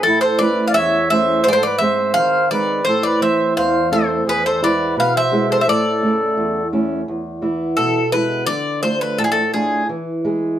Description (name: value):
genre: greek folk, Greek bouzouki band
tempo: 85 BPM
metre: 2/4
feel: straight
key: unclear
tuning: A4 = 440 Hz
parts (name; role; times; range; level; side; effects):
- Greek bouzouki; melody; 0.0-9.9 s; G#4 to F5; -18 LUFS; equal; none
- mellow accordion; second line; 0.0-6.7 s; E4 to D5; -20 LUFS; right 1 dB; none
- fingerpicked old ladder-braced acoustic guitar; accompaniment; 0.0-10.6 s; E2 to G#4; -20 LUFS; right 2 dB; none
room: moderate studio reverb, RT60 0.6 s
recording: none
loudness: -15 LUFS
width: side -11 dB against mid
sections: 0.0-7.1 A section; 7.1-10.6 B section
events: none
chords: 0.1 A; 1.5 G#; 2.9 Am; 4.3 E; 5.7 A; 7.1 E; 8.5 Dm; 9.9 E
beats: | 0.05 0.75 | 1.45 2.16 | 2.86 3.56 | 4.26 4.96 | 5.67 6.37 | 7.07 7.78 | 8.48 9.18 | 9.89 10.59